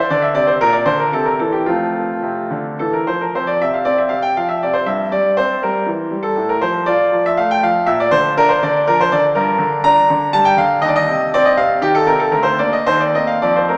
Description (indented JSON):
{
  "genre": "classical, baroque-style suite movement for grand piano",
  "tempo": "104-124 BPM",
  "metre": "3/4",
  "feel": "rubato",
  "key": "F major",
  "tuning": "A4 = 439 Hz",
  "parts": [
    { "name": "bright concert grand piano", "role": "solo", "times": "0.0-13.8 s", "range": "D2 to Bb5", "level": "-16 LUFS", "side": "equal", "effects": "none" }
  ],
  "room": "wet church reverb, RT60 3.5 s",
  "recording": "recorded in a church or concert hall, small speaker sound",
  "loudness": "-16 LUFS",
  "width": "mono",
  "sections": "0.0-3.3 A section; 3.3-13.8 B section",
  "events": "none",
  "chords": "0.1 Cadd9; 0.6 Bbadd9; 1.1 C; 1.7 F; 3.3 F5; 4.9 C/G; 6.4 F/A; 7.9 Bb; 9.4 Gm; 10.8 Cm/Eb; 12.3 Bb/D; 12.9 Cm7/Eb",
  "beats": "| 0.10 0.60 1.13 | 1.68 2.24 2.80 | 3.35 3.85 4.35 | 4.86 5.36 5.86 | 6.36 6.86 7.36 | 7.86 8.35 8.85 | 9.35 9.84 10.33 | 10.83 11.33 11.83 | 12.34 12.87 13.42"
}